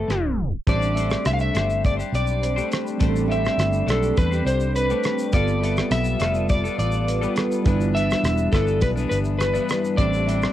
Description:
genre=indie pop, bedroom pop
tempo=103 BPM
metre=4/4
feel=straight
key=A minor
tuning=A4 = 440 Hz
part: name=electric slide guitar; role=melody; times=0.0-10.5 s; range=A4 to F5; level=-25 LUFS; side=left 1 dB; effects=lush chorus, plate reverb, tape echo
part: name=mellow tine electric piano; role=accompaniment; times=0.0-10.5 s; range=G3 to C5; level=-29 LUFS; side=right 7 dB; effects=medium stereo tremolo
part: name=twelve-string electric guitar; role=accompaniment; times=0.0-10.5 s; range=G2 to C5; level=-28 LUFS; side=left 6 dB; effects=wide subtle chorus, warbly pitch drift
part: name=vintage muted fingered electric bass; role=bass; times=0.0-10.4 s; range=E1 to E2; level=-24 LUFS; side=equal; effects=none
part: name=vibraphone with soft mallets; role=second line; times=0.1-10.4 s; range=B4 to E5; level=-35 LUFS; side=right 7 dB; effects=lush chorus, plate reverb, tape echo
part: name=damped 70s drum kit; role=drums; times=0.1-10.5 s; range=hi-hat, kick drum, rim click, shaker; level=-25 LUFS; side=equal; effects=cassette tape
part: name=ethereal airy pad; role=sustained chords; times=1.5-10.5 s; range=C4 to B5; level=-34 LUFS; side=equal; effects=ensemble chorus, built-in reverb
room=moderate small room reverb, RT60 0.6 s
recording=home recording on cassette, tape stop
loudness=-19 LUFS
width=side -12 dB against mid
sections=0.7-10.5 A section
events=tape stop 0.1-0.7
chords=0.0 Am9; 0.7 Am11; 5.3 G9; 7.7 Em7; 10.0 Am11

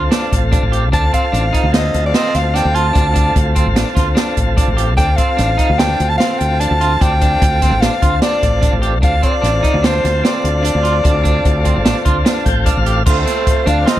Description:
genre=progressive instrumental, band music in an uneven meter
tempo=148 BPM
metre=5/4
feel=straight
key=D minor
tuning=A4 = 440 Hz
part: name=tonewheel organ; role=accompaniment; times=0.0-14.0 s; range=C4 to G5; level=-21 LUFS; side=left 1 dB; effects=fast rotary speaker
part: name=electric guitar at the edge of break-up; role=arpeggios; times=0.0-14.0 s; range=D3 to G4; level=-22 LUFS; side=right 3 dB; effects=spring reverb
part: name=woody fretless electric bass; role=bass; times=0.0-14.0 s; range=A1 to D2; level=-17 LUFS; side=equal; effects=none
part: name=open jazz drum kit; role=drums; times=0.1-14.0 s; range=crash cymbal, hi-hat, kick drum, snare drum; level=-16 LUFS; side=equal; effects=none
part: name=warm soprano saxophone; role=melody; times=0.9-14.0 s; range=C5 to A5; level=-18 LUFS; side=equal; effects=analog delay
part: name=clear alto saxophone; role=second line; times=13.1-14.0 s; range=A3 to D4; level=-22 LUFS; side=right 5 dB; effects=none
part: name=egg shaker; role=percussion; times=13.1-13.6 s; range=none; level=-32 LUFS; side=left 4 dB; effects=none
room=light reverb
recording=none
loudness=-12 LUFS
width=side -13 dB against mid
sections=0.0-13.1 A section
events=tonewheel organ fill 12.3-13.1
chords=0.0 Dm7

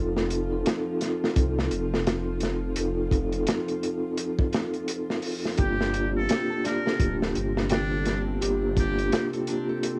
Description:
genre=trip hop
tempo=85 BPM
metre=4/4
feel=swing 59% on 16ths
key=unclear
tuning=A4 = 440 Hz
part: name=vibraphone with soft mallets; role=accompaniment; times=0.0-10.0 s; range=Bb3 to A4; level=-31 LUFS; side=equal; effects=tremolo, cassette tape, tape echo
part: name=string machine, cellos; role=sustained chords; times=0.0-10.0 s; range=F3 to F4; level=-41 LUFS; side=equal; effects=ensemble chorus, cassette tape
part: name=dark detuned saw bass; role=bass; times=0.0-9.1 s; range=D1 to C2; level=-32 LUFS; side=equal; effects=none
part: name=crunchy breakbeat drum kit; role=drums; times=0.2-10.0 s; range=hi-hat, kick drum, snare drum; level=-30 LUFS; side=equal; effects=cassette tape
part: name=trumpet with metal mute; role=melody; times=5.6-9.3 s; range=D4 to Bb4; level=-35 LUFS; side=equal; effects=vintage 12-bit sampler grit, tape echo
part: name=nylon-string guitar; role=arpeggios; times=5.6-10.0 s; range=D4 to G5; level=-38 LUFS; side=equal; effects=cassette tape, analog delay
room=little or no reverb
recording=home recording on cassette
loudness=-27 LUFS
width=mono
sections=0.0-10.0 A section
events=none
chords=0.0 F7; 5.6 Gm7

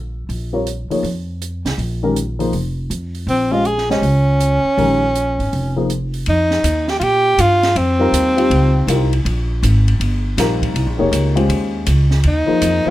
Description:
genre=modal jazz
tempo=161 BPM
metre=4/4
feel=swing 65% on 8ths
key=F minor from 6.3 s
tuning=A4 = 440 Hz
part: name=upright bass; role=bass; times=0.0-12.9 s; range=F1 to Bb2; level=-18 LUFS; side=equal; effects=none
part: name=open jazz drum kit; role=drums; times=0.3-12.7 s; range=hi-hat, kick drum, ride cymbal, snare drum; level=-27 LUFS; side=right 2 dB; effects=none
part: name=dark grand piano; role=accompaniment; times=0.5-12.9 s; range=Eb3 to Eb5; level=-19 LUFS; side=left 2 dB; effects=none
part: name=clear alto saxophone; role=melody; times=3.3-9.1, 12.3-12.9 s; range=C4 to Ab4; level=-16 LUFS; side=equal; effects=none
room=little or no reverb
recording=minimal, uncompressed stereo recording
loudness=-14 LUFS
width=side -15 dB against mid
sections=0.0-6.3 A section; 6.3-12.9 B section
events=none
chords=0.3 F9sus4; 12.2 Ebsus4

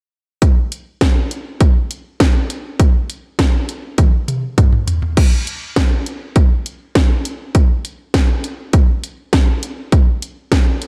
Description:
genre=pop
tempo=101 BPM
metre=4/4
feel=straight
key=none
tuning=none
part: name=house drum kit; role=drums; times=0.4-10.9 s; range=crash cymbal, hi-hat, kick drum, snare drum, toms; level=-15 LUFS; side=equal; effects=overdrive
room=light reverb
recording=dark, warm production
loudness=-16 LUFS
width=mono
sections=0.4-5.2 A section; 5.2-10.9 B section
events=drum fill 4.0-5.2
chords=none

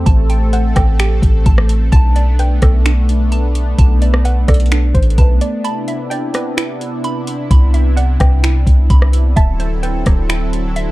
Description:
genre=hip hop, atmospheric cloud-rap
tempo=129 BPM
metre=4/4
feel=half-time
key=unclear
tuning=A4 = 440 Hz
part: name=soft round pluck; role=melody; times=0.0-10.9 s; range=B4 to A5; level=-25 LUFS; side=right 1 dB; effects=chorus, digital delay
part: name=warm analog pad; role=sustained chords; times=0.0-10.9 s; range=C3 to A4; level=-22 LUFS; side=equal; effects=chorus, sidechain pumping
part: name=hollow square pluck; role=arpeggios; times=0.0-10.9 s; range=F#3 to B5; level=-27 LUFS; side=right 5 dB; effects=chorus, digital delay
part: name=soft 808-style bass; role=bass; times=0.0-10.9 s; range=D1 to C2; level=-13 LUFS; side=equal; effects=none
part: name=smooth R&B drum kit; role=drums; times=0.1-10.9 s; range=finger snaps, hi-hat, kick drum, rim click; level=-13 LUFS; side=equal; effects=none
room=digital ambience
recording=dark, warm production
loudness=-11 LUFS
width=side -18 dB against mid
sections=0.0-10.9 A section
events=break 5.6-6.6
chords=0.0 Am7; 1.9 Bm7; 5.6 Cmaj9; 9.4 D13

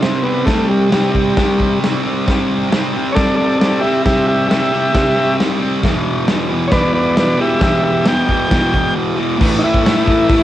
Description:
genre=garage rock duo or trio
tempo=134 BPM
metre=4/4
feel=straight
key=unclear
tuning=A4 = 444 Hz
part: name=overdriven combo organ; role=melody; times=0.0-10.4 s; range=G3 to G5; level=-16 LUFS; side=equal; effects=cassette tape
part: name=fuzz guitar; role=riff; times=0.0-10.4 s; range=E2 to C4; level=-16 LUFS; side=equal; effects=distortion, cassette tape
part: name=raw garage drum kit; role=drums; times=0.0-10.4 s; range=crash cymbal, hi-hat, kick drum, snare drum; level=-18 LUFS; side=equal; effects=cassette tape
room=moderate booth ambience, RT60 0.2 s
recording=home recording on cassette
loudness=-12 LUFS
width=side -13 dB against mid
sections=0.0-9.4 A section; 9.4-10.4 B section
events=break 9.0-9.4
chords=0.0 C; 5.8 Em; 9.4 A5

